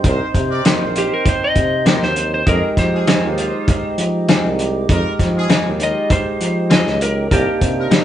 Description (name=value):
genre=straight-eighth soul blues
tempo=99 BPM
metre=4/4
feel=straight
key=unclear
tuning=A4 = 440 Hz
part: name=percussive tonewheel organ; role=accompaniment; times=0.0-8.0 s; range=Ab3 to C5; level=-22 LUFS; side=right 2 dB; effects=overdrive, slow rotary speaker
part: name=clear horn section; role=sustained chords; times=0.0-7.9 s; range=C4 to D5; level=-28 LUFS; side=right 1 dB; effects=none
part: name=warm tuba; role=bass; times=0.0-8.0 s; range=Bb1 to F3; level=-21 LUFS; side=equal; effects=none
part: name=cloth-damped thuddy drum kit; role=drums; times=0.0-8.0 s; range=hi-hat, kick drum, snare drum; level=-17 LUFS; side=equal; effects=none
part: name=direct-recorded clean electric guitar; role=stabs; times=0.7-8.0 s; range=C3 to Ab4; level=-20 LUFS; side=left 4 dB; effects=none
part: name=electric slide guitar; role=melody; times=1.0-8.0 s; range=G4 to Eb5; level=-20 LUFS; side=left 1 dB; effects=none
room=light reverb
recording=band playing live in one room, nothing above 10.3 kHz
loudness=-14 LUFS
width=side -11 dB against mid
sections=0.0-8.0 A section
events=electric slide guitar solo 0.0-8.0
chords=0.0 Cm7; 2.5 Fm7; 7.3 Cm7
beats=| 0.04 0.65 1.26 1.86 | 2.47 3.08 3.68 4.29 | 4.89 5.50 6.10 6.71 | 7.31 7.92